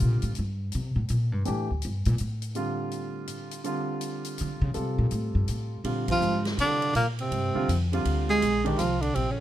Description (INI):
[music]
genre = modal jazz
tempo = 164 BPM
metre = 3/4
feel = swing 64% on 8ths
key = Bb mixolydian from 5.9 s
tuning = A4 = 440 Hz
[part]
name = warm baby grand piano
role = accompaniment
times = 0.0-8.8 s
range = D3 to A4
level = -32 LUFS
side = right 1 dB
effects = none
[part]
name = upright bass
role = bass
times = 0.0-9.4 s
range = Bb1 to D3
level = -27 LUFS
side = equal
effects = none
[part]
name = swinging big-band drum kit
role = drums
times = 0.2-9.3 s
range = hi-hat, kick drum, ride cymbal, snare drum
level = -39 LUFS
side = left 1 dB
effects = none
[part]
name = warm tenor saxophone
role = melody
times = 6.1-9.4 s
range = Bb3 to Ab4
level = -26 LUFS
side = left 1 dB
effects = none
[part]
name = mellow bass clarinet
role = second line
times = 6.1-9.4 s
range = Bb2 to Ab3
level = -30 LUFS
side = right 7 dB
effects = none
[sound]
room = light reverb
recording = close, detailed microphones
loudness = -25 LUFS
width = side -12 dB against mid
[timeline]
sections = 0.0-5.9 A section; 5.9-9.4 B section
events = upright bass solo 0.0-5.9; band accent 6.0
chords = 0.0 C7sus4; 1.5 Gsus2; 4.8 Fadd9; 5.9 Bb9